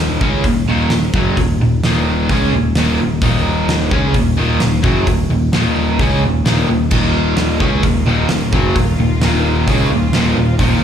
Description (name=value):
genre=hard rock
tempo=130 BPM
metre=4/4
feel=straight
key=Eb dorian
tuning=A4 = 439 Hz
part: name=overdriven semi-hollow guitar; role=riff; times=0.0-10.8 s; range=Eb2 to Db4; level=-19 LUFS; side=left 10 dB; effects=none
part: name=overdriven semi-hollow guitar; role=riff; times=0.0-10.8 s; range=Eb2 to Db4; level=-18 LUFS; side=right 8 dB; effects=tremolo, slapback echo
part: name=picked electric bass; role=bass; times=0.0-10.8 s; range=Eb1 to Db2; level=-18 LUFS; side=equal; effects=none
part: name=huge arena drum kit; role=drums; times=0.2-10.7 s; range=crash cymbal, hi-hat, kick drum, snare drum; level=-19 LUFS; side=equal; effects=none
part: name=warm studio string section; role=sustained chords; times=6.9-10.8 s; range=Eb3 to F4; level=-25 LUFS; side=left 1 dB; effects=none
room=light reverb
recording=live gig heard through the venue's PA, club reverb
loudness=-12 LUFS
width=side -8 dB against mid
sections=0.0-10.8 A section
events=none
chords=0.0 Ebm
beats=0.44 0.91 | 1.37 1.84 2.30 2.77 | 3.23 3.69 4.15 4.62 | 5.08 5.54 6.00 6.46 | 6.92 7.38 7.84 8.30 | 8.76 9.21 9.68 10.13 | 10.60